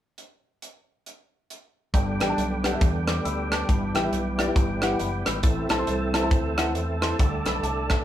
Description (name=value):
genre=uptempo gospel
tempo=137 BPM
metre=4/4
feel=swing 61% on 8ths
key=G major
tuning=A4 = 440 Hz
part: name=tight funk drum kit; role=drums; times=0.2-8.0 s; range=hi-hat, kick drum, rim click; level=-25 LUFS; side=equal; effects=none
part: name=dark upright piano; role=accompaniment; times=1.9-8.0 s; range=G2 to G6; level=-28 LUFS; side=left 1 dB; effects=none
part: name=overdriven tonewheel organ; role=sustained chords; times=1.9-8.0 s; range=D3 to A4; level=-30 LUFS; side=right 2 dB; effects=fast rotary speaker, chorus vibrato
part: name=fingered electric bass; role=bass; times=1.9-8.0 s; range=F#1 to E2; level=-30 LUFS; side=equal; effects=none
room=moderate studio reverb, RT60 0.6 s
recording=band playing live in one room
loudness=-22 LUFS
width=side -11 dB against mid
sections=0.2-1.9 A section; 1.9-8.0 B section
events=none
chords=0.2 N.C.; 1.9 G; 3.7 Em/G; 5.4 Am; 7.2 Dsus4